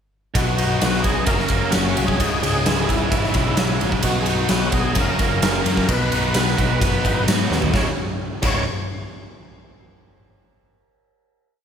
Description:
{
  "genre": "classic rock",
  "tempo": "130 BPM",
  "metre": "4/4",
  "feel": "straight",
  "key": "C# dorian",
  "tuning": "A4 = 440 Hz",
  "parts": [
    { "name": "string machine, cellos", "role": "sustained chords", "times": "0.3-8.1 s", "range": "E3 to C#5", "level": "-34 LUFS", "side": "equal", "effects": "none" },
    { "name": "overdriven electric guitar", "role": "riff", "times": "0.3-8.6 s", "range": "C#2 to B3", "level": "-25 LUFS", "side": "left 8 dB", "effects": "slapback echo" },
    { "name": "tight distorted guitar", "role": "riff", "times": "0.3-8.6 s", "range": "C#2 to B4", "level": "-26 LUFS", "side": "right 8 dB", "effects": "distortion, slapback echo" },
    { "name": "overdriven tonewheel organ", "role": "melody", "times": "0.4-8.7 s", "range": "E4 to C#5", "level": "-26 LUFS", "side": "right 1 dB", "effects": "slow rotary speaker, chorus vibrato, slapback echo, digital delay" },
    { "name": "growling picked electric bass", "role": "bass", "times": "0.4-8.6 s", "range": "C#1 to G#2", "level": "-24 LUFS", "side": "equal", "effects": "overdrive" },
    { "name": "big rock drum kit", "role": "drums", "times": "0.4-8.5 s", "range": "crash cymbal, kick drum, ride cymbal, snare drum, toms", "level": "-21 LUFS", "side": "equal", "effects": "none" }
  ],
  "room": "moderate recital hall reverb, RT60 1.6 s, small room ambience",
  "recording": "big arena sound",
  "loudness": "-17 LUFS",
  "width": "side -8 dB against mid",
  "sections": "0.3-7.7 pre-chorus; 7.7-9.6 final chord",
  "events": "drum fill 7.5",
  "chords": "0.3 B; 1.3 F#add9; 2.2 C#m; 4.0 B; 5.0 F#add9; 5.9 B; 7.7 C#m"
}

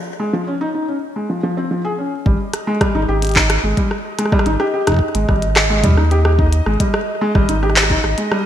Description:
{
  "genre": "IDM",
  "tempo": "109 BPM",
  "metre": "4/4",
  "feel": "straight",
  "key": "unclear",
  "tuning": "A4 = 445 Hz",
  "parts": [
    { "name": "felt-muted upright piano", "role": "arpeggios", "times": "0.2-8.4 s", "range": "F3 to Ab4", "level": "-19 LUFS", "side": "left 1 dB", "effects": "ping-pong delay" },
    { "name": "round analog bass", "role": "bass", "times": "2.3-8.1 s", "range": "Ab1 to Eb2", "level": "-17 LUFS", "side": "equal", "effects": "tube saturation" },
    { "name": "electronic kick drum", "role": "drums", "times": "2.3-8.0 s", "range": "none", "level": "-18 LUFS", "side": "equal", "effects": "studio reverb" },
    { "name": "bubbling stepped-filter texture", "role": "texture", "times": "2.5-8.5 s", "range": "Eb5", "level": "-26 LUFS", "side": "right 3 dB", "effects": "chorus, built-in reverb" },
    { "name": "glitchy drum kit", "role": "drums", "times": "2.5-8.4 s", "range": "handclaps, hi-hat, rim click", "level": "-19 LUFS", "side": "equal", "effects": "studio reverb, gated reverb, ping-pong delay" }
  ],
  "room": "light reverb, digital ambience",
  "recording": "bright 1980s-style digital production",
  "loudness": "-14 LUFS",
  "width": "side -10 dB against mid",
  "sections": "0.0-2.3 A section; 2.3-8.5 B section",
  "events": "break 0.1-2.3",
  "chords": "0.0 Dbadd9/F; 2.3 Ab5"
}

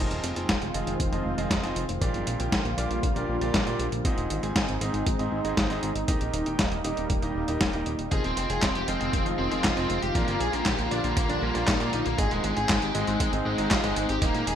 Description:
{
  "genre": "italo disco",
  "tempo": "118 BPM",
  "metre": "4/4",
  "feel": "straight",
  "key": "F dorian",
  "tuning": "A4 = 440 Hz",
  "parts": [
    { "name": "lush unison pad", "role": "sustained chords", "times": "0.0-14.6 s", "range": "D3 to F4", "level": "-31 LUFS", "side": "equal", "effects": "chorus" },
    { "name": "bright concert grand piano", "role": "stabs", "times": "0.0-14.6 s", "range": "Ab2 to Ab5", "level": "-33 LUFS", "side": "right 2 dB", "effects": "none" },
    { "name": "chorused synth bass", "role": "bass", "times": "0.0-14.6 s", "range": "Eb1 to Bb1", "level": "-32 LUFS", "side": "equal", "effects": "none" },
    { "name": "dusty soul sampler-style drum kit", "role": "drums", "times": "0.1-14.6 s", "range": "handclaps, hi-hat, snare drum", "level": "-29 LUFS", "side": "equal", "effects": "overdrive" },
    { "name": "electronic kick drum", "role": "drums", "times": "0.5-14.3 s", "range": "none", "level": "-29 LUFS", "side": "equal", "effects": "overdrive" },
    { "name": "bluesy overdriven lead guitar", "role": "melody", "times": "8.1-14.6 s", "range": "Ab3 to Ab4", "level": "-29 LUFS", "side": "equal", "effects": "distortion, digital delay" }
  ],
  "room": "moderate plate reverb, RT60 1.1 s",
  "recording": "bright 1980s-style digital production",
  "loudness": "-24 LUFS",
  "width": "side -9 dB against mid",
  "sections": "0.0-14.6 A section",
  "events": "none",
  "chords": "0.0 Fm7; 2.0 Bb6; 4.0 Ab; 6.1 Eb; 8.1 Fm7; 10.2 Bb6; 12.2 Ab"
}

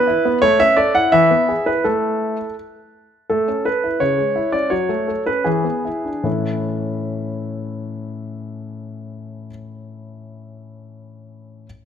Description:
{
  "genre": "classical-period piano sonatina",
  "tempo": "74-88 BPM",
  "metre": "2/4",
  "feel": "straight",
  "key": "A major",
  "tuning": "A4 = 439 Hz",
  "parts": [
    { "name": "warm concert grand piano", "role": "solo", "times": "0.0-11.7 s", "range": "A2 to F#5", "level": "-17 LUFS", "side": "equal", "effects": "none" }
  ],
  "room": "moderate recital hall reverb, RT60 1.6 s",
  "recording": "close, detailed microphones",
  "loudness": "-16 LUFS",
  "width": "side -8 dB against mid",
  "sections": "0.0-3.3 A section; 3.3-6.3 B section; 6.3-9.4 C section",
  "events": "slowing down 2.6-6.3",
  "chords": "0.4 A; 1.1 E; 1.9 A5; 3.3 A; 4.0 C#m; 4.7 F#m; 5.5 E7; 6.3 A"
}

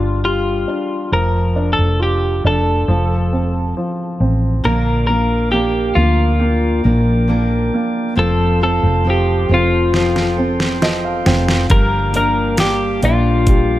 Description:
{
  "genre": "pop ballad",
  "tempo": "68 BPM",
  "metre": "4/4",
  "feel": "straight",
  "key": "Bb major",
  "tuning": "A4 = 440 Hz",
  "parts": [
    { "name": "twelve-string electric guitar", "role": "melody", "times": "0.0-13.8 s", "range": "F4 to Bb4", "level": "-19 LUFS", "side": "left 1 dB", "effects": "none" },
    { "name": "clear baby grand piano", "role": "accompaniment", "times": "0.0-13.8 s", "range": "F3 to G5", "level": "-20 LUFS", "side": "right 1 dB", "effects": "none" },
    { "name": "woody fretless electric bass", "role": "bass", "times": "0.0-13.8 s", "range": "F1 to D2", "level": "-17 LUFS", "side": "equal", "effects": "analog chorus" },
    { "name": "picked steel-string acoustic guitar", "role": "arpeggios", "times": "4.6-13.8 s", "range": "G2 to Bb4", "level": "-24 LUFS", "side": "left 4 dB", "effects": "none" },
    { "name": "tonewheel organ", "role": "sustained chords", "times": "4.7-13.8 s", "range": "Bb3 to D6", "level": "-26 LUFS", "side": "right 2 dB", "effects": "stopped rotary speaker" },
    { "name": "smooth R&B drum kit", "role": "drums", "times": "9.9-13.7 s", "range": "hi-hat, kick drum, snare drum", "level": "-17 LUFS", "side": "equal", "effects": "none" }
  ],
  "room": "little or no reverb",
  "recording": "none",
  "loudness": "-14 LUFS",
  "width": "side -14 dB against mid",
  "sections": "0.0-4.6 A section; 4.6-13.8 B section",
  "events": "drum fill 9.9-11.7; grand piano fill 10.4-11.7",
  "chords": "0.0 G7(no3); 1.1 F69; 2.9 F; 4.6 Bb; 8.2 F; 11.7 Gm7"
}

